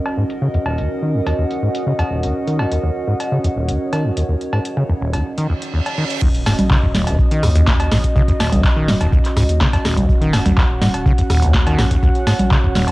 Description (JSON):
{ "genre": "acid house", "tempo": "124 BPM", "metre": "4/4", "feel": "straight", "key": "Eb minor", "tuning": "A4 = 439 Hz", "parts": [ { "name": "dark analog pad", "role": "sustained chords", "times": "0.0-12.9 s", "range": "Db4 to Gb5", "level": "-24 LUFS", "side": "right 1 dB", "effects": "chorus, sidechain pumping, cassette tape" }, { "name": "sub drop, reverse cymbal and impact", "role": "sound effects", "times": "0.0-0.4, 5.5-8.2 s", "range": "none", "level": "-29 LUFS", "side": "right 2 dB", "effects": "none" }, { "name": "warbly tape-like pad", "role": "texture", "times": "0.0-6.2 s", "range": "Db4 to Gb5", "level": "-27 LUFS", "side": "right 1 dB", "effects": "chorus, built-in reverb, phaser, sidechain pumping, cassette tape" }, { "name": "booming analog drum machine", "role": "drums", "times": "0.1-12.9 s", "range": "cabasa, congas, cowbell, crash cymbal, handclaps, hi-hat, rim click, snare drum", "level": "-21 LUFS", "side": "equal", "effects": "low-pass filter on snare, cassette tape, low-pass filter on perc, low-pass filter on hats, low-pass filter on cymbals" }, { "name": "acid bass, saw", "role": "riff", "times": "0.2-12.9 s", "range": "Eb1 to Eb3", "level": "-18 LUFS", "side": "equal", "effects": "overdrive, cassette tape, sidechain pumping" }, { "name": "warm sub bass", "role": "bass", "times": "6.2-12.9 s", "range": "Eb1 to Eb2", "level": "-20 LUFS", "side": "equal", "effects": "sidechain pumping" }, { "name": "electronic kick drum", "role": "drums", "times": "6.2-12.6 s", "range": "none", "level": "-16 LUFS", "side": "equal", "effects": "cassette tape" } ], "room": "digital ambience", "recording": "home recording on cassette", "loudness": "-14 LUFS", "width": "side -19 dB against mid", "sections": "0.0-6.2 A section; 6.2-12.9 B section", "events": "impact 0.0-0.4, 6.2-8.2; filter sweep on drum 0.0-6.2; reverse cymbal 5.5-6.2; drop 6.2-12.9", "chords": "0.0 Ebm7" }